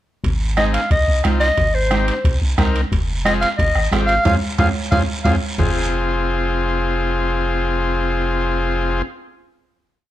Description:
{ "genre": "latin, cumbia", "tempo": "180 BPM", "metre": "4/4", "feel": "straight", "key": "F minor", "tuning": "A4 = 440 Hz", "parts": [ { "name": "punchy sub bass", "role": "bass", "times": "0.2-9.0 s", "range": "F1 to F2", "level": "-21 LUFS", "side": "equal", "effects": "none" }, { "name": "bombo", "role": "percussion", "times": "0.2-5.7 s", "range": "none", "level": "-22 LUFS", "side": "equal", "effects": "none" }, { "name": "guiro", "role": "percussion", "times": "0.2-5.7 s", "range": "none", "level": "-31 LUFS", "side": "right 3 dB", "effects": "none" }, { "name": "timbales", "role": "percussion", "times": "0.2-5.7 s", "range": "none", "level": "-30 LUFS", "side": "right 5 dB", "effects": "none" }, { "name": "breathy clarinet", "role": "melody", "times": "0.6-5.3 s", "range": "C5 to F5", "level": "-19 LUFS", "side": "equal", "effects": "none" }, { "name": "overdriven combo organ", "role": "accompaniment", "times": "0.6-9.0 s", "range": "C4 to Bb4", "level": "-22 LUFS", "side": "left 3 dB", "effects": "none" }, { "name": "congas", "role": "percussion", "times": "0.6-5.7 s", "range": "none", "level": "-25 LUFS", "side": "right 4 dB", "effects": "none" } ], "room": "light reverb", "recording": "none", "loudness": "-16 LUFS", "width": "side -13 dB against mid", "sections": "0.2-5.6 A section; 5.6-8.3 final chord", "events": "band accent 4.2-5.6", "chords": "0.2 Ab; 2.9 Fm" }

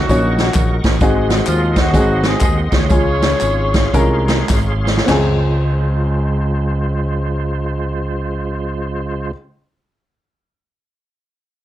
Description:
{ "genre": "uptempo gospel", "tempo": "98-131 BPM", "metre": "4/4", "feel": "swing 64% on 8ths", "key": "Db major", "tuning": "A4 = 440 Hz", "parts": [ { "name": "mellow horn section", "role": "melody", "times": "0.0-4.5 s", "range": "F3 to Db5", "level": "-20 LUFS", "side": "left 1 dB", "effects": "none" }, { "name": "bright tonewheel organ", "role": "sustained chords", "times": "0.0-9.3 s", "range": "Db3 to Db6", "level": "-23 LUFS", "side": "right 2 dB", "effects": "fast rotary speaker, overdrive, chorus vibrato" }, { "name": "fingered electric bass", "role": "bass", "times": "0.0-9.3 s", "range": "Ab1 to Eb2", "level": "-18 LUFS", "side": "equal", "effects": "none" }, { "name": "warm upright piano", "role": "accompaniment", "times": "0.1-9.3 s", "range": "Db2 to Db5", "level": "-20 LUFS", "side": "left 1 dB", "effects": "none" }, { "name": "swinging big-band drum kit", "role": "drums", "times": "0.1-5.3 s", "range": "crash cymbal, hi-hat, kick drum, snare drum, toms", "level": "-17 LUFS", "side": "equal", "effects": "none" }, { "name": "tambourine and handclaps", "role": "percussion", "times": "0.1-5.4 s", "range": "none", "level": "-31 LUFS", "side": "left 5 dB", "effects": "none" } ], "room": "light reverb", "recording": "none", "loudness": "-14 LUFS", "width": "side -13 dB against mid", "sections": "0.0-5.1 A section; 5.1-10.0 B section", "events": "slowing down 1.0-5.1; drum fill 4.5-5.1", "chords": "0.0 Gb6; 1.0 Ab7; 2.9 Dbmaj7" }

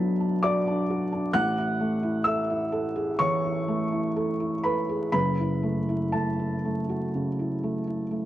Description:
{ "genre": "neoclassical minimalist piano", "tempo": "60-66 BPM", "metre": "4/4", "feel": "rubato", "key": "A major", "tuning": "A4 = 440 Hz", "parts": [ { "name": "felt-muted upright piano", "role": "solo", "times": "0.0-8.3 s", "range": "F#1 to F#6", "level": "-24 LUFS", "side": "equal", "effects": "none" } ], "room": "light reverb", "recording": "dark, warm production, vinyl crackle", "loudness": "-24 LUFS", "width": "side -13 dB against mid", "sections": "0.0-8.3 A section", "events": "none", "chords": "0.0 Bm; 1.4 Amaj7; 5.1 F#m7" }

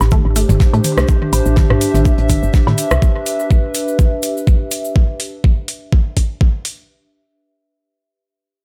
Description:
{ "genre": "minimal techno", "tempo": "124 BPM", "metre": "4/4", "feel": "swing 55% on 16ths", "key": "A minor", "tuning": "A4 = 440 Hz", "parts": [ { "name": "woody FM bass", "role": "bass", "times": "0.0-3.0 s", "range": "G1 to A2", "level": "-18 LUFS", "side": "equal", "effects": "sidechain pumping" }, { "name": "damped 70s drum kit", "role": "drums", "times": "0.0-2.9 s", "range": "hi-hat, shaker, snare drum", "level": "-36 LUFS", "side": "equal", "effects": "sidechain pumping on hats, high-pass filter on hats, studio reverb, high-pass filter on snare, sidechain pumping on perc, high-pass filter on perc, high-pass filter on room" }, { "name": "booming analog drum machine", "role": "percussion", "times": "0.0-3.0 s", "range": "rim click, toms, woodblock", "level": "-22 LUFS", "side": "equal", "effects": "studio reverb, digital delay" }, { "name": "cabasa", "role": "percussion", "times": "0.0-4.9 s", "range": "none", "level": "-32 LUFS", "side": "equal", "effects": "none" }, { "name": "warbly tape-like pad", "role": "texture", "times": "0.0-5.0 s", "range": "D4 to E5", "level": "-23 LUFS", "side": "equal", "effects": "chorus, built-in reverb, sidechain pumping" }, { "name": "resonant blip pluck", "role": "riff", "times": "0.1-1.0 s", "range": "A3", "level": "-26 LUFS", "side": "equal", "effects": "phaser, sidechain pumping, delay" }, { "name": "electronic kick drum", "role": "drums", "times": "0.1-6.5 s", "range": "none", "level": "-15 LUFS", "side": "equal", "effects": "overdrive, studio reverb" }, { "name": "electronic hi-hat", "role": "drums", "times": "0.4-6.8 s", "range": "none", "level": "-25 LUFS", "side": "equal", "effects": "overdrive, studio reverb" } ], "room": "little or no reverb", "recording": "none", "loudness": "-15 LUFS", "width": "mono", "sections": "0.0-6.9 A section", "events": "filter sweep on synth arpeggio sound 0.0-1.1", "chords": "0.0 Am7" }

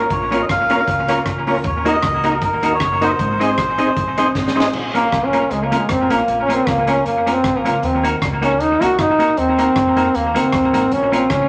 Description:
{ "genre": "ska", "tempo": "155 BPM", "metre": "4/4", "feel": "swing 55% on 8ths", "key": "Bb minor", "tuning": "A4 = 440 Hz", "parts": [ { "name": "melodica", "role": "melody", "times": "0.0-4.3 s", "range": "Bb4 to F5", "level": "-22 LUFS", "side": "equal", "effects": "none" }, { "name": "semi-hollow electric guitar", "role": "accompaniment", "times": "0.0-11.2 s", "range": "Bb3 to C5", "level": "-23 LUFS", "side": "equal", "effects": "tape echo" }, { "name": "tonewheel organ", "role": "stabs", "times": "0.0-4.7 s", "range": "Db4 to Eb5", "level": "-24 LUFS", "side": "equal", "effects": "chorus vibrato, slow rotary speaker" }, { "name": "upright bass", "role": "bass", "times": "0.0-11.5 s", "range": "Gb1 to F2", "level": "-30 LUFS", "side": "equal", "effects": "none" }, { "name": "crunchy breakbeat drum kit", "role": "drums", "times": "0.1-11.4 s", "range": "crash cymbal, hi-hat, kick drum, rim click, snare drum", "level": "-27 LUFS", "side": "equal", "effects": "tape echo" }, { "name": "bright trombone", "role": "melody", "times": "5.0-11.5 s", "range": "Ab3 to Gb4", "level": "-18 LUFS", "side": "equal", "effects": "none" } ], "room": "wet large studio reverb, RT60 1.3 s", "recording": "none", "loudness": "-17 LUFS", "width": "mono", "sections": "0.0-4.7 A section; 4.7-11.5 B section", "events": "drum fill 4.4-4.7; trombone solo 4.7-11.5", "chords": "0.0 Bbm; 1.6 Ebm; 3.2 Ab; 4.7 Bbm; 7.8 Ebm; 10.9 Bbm" }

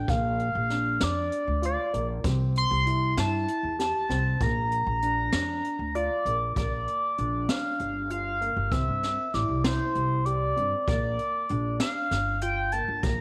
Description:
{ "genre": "progressive instrumental, band music in an uneven meter", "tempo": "194 BPM (eighths)", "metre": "7/8", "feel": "straight", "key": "Bb lydian", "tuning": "A4 = 437 Hz", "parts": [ { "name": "sync lead", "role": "melody", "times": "0.0-13.2 s", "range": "C5 to C6", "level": "-30 LUFS", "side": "equal", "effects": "chorus" }, { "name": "dark grand piano", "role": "arpeggios", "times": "0.0-13.2 s", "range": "Bb3 to G4", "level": "-37 LUFS", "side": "equal", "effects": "none" }, { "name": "upright bass", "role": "bass", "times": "0.0-13.2 s", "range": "G1 to G2", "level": "-32 LUFS", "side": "equal", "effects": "none" }, { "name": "jazz brush drum kit", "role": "drums", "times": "0.1-13.2 s", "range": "hi-hat, kick drum, snare drum", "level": "-33 LUFS", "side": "equal", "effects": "none" } ], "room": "moderate plate reverb, RT60 1.6 s, small room ambience", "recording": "none", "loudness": "-27 LUFS", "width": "mono", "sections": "0.0-6.6 A section; 6.6-13.2 B section", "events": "none", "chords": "0.1 Bb; 2.2 C6; 4.4 Bb; 8.7 C; 10.9 Bb" }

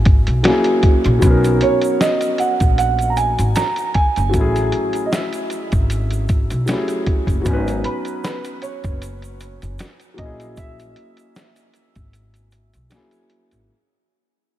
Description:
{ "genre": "lo-fi hip hop", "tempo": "77 BPM", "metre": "4/4", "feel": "swing 56% on 16ths", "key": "unclear", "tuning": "A4 = 440 Hz", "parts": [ { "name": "felt-muted upright piano", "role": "accompaniment", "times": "0.0-13.7 s", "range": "F#3 to B4", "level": "-21 LUFS", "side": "left 1 dB", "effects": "low-pass filter" }, { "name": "upright bass", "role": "bass", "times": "0.0-13.7 s", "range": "F#1 to B1", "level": "-20 LUFS", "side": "equal", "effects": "none" }, { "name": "lo-fi sampler-style drum kit", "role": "drums", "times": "0.1-13.7 s", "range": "hi-hat, kick drum, snare drum", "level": "-18 LUFS", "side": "equal", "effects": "vintage 12-bit sampler grit" }, { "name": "egg shaker", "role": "percussion", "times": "1.2-13.7 s", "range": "none", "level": "-41 LUFS", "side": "right 5 dB", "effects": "none" }, { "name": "warm upright piano", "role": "melody", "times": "1.6-12.9 s", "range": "B4 to A#5", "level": "-22 LUFS", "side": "right 4 dB", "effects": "lush chorus, low-pass filter, ping-pong delay" } ], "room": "light reverb, studio reverb", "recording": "none", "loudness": "-15 LUFS", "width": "side -13 dB against mid", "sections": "0.0-13.7 A section", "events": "break 0.0-1.2, 12.1-13.7; fade-out 0.0-13.7", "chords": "0.0 F#9; 1.2 Bmaj7; 4.3 F#m9; 7.5 G#m7; 10.2 F#9/A#" }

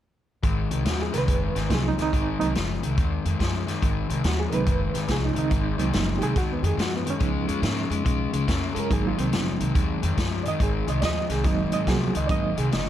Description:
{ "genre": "electric blues shuffle", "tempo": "142 BPM", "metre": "4/4", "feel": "swing 66% on 8ths", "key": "Ab mixolydian", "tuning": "A4 = 440 Hz", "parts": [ { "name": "overdriven semi-hollow guitar", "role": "riff", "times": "0.4-12.9 s", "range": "Ab2 to Bb3", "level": "-28 LUFS", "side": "left 5 dB", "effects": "none" }, { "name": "upright bass", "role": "bass", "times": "0.4-12.9 s", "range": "Gb1 to Ab2", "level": "-28 LUFS", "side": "equal", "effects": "none" }, { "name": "vintage drum kit", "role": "drums", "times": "0.4-12.9 s", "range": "hi-hat, kick drum, snare drum", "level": "-27 LUFS", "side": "equal", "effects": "none" }, { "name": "bright reed electric piano", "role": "accompaniment", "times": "0.9-12.9 s", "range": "F3 to Eb5", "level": "-28 LUFS", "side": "right 5 dB", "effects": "fast tremolo" } ], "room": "light reverb", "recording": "none", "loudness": "-22 LUFS", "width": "side -11 dB against mid", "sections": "0.4-12.9 A section", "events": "none", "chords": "0.4 Ab7; 7.2 Db7; 8.9 Ab7" }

